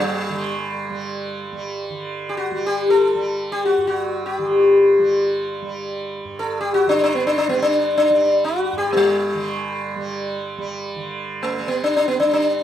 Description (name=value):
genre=indian classical, Hindustani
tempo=free time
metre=none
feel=none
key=unclear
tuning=A4 = 445 Hz
part: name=sitar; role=melody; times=0.0-12.6 s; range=G3 to A4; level=-18 LUFS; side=left 2 dB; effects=none
part: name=tanpura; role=drone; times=0.0-12.6 s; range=G2 to G3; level=-27 LUFS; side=right 4 dB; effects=none
room=light reverb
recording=minimal, uncompressed stereo recording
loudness=-18 LUFS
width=side -10 dB against mid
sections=0.0-1.9 A section; 1.9-11.0 A section; 11.0-12.6 A section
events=none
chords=none